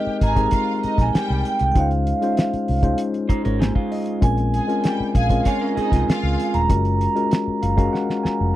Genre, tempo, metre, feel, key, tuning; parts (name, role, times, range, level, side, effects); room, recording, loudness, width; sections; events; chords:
lush 1970s-style soul; 97 BPM; 4/4; straight; A4 = 442 Hz
vibraphone with medium mallets; melody; 0.0-8.5 s; Eb5 to Bb5; -24 LUFS; right 5 dB
dark studio string section; second line; 0.0-6.5 s; G3 to Ab5; -30 LUFS; left 2 dB
tine electric piano; accompaniment; 0.0-8.6 s; Ab3 to Bb5; -23 LUFS; left 4 dB
vintage muted fingered electric bass; bass; 0.1-8.5 s; Eb1 to Db2; -22 LUFS; equal
cloth-damped thuddy drum kit; drums; 0.2-8.4 s; hi-hat, kick drum, snare drum; -20 LUFS; equal
electric guitar through a small old amp; riff; 3.3-6.7 s; Ab3 to Db5; -27 LUFS; right 8 dB
little or no reverb; dry, close 1970s-style studio recording; -18 LUFS; side -14 dB against mid
0.0-8.6 A section
tine electric piano fill 3.0-4.2, 7.3-8.6; drum fill 7.9-8.6
0.0 Abmaj7; 1.8 Dbmaj7; 4.2 Bbm7; 6.7 Gbmaj7